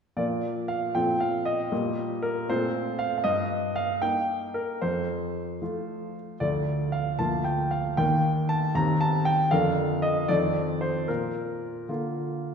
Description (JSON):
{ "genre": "classical-period piano sonatina", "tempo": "76 BPM (dotted quarters)", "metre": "6/8", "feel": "rubato", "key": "Bb major", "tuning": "A4 = 440 Hz", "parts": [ { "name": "warm baby grand piano", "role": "solo", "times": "0.2-12.5 s", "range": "D2 to Bb5", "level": "-24 LUFS", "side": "equal", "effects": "none" } ], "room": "wet scoring stage reverb, RT60 1.9 s", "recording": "recorded in a church or concert hall", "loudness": "-24 LUFS", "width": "side -6 dB against mid", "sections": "0.2-12.5 A section", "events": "none", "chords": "0.2 Bb; 0.9 F/Bb; 1.7 Eb/Bb; 2.5 F/Bb; 3.2 Eb/G; 4.8 F; 6.4 Dm; 7.2 Bb/D; 8.0 Eb; 8.8 Cm/Eb; 9.5 Bb/F; 10.3 F7; 11.1 Bb", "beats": "| 0.17 0.95 | 1.72 2.48 | 3.24 4.02 | 4.81 5.61 | 6.41 7.20 | 7.98 8.75 | 9.51 10.29 | 11.09 11.89" }